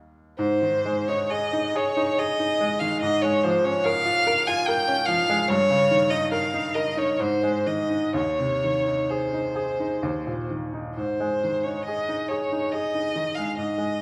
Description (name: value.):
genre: classical, romantic duo for violin and grand piano.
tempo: 60-74 BPM.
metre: 3/4.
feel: rubato.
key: Ab major.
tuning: A4 = 440 Hz.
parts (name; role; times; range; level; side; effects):
bright baby grand piano; accompaniment; 0.0-14.0 s; Eb2 to Bb4; -29 LUFS; equal; none.
rich violin; melody; 0.4-14.0 s; C5 to Ab5; -26 LUFS; equal; none.
room: moderate scoring stage reverb, RT60 1.6 s.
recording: none.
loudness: -24 LUFS.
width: mono.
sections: 0.4-14.0 A section.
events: none.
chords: 0.4 Ab5; 3.0 Bbm7/Ab; 5.5 Eb7/G; 7.2 Ab; 8.1 Ab/Eb; 10.0 Eb5; 11.0 Ab5.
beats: | 0.38 1.30 2.17 | 3.01 3.84 4.66 | 5.49 6.32 7.20 | 8.15 9.10 10.02 | 10.96 11.86 12.72 | 13.57.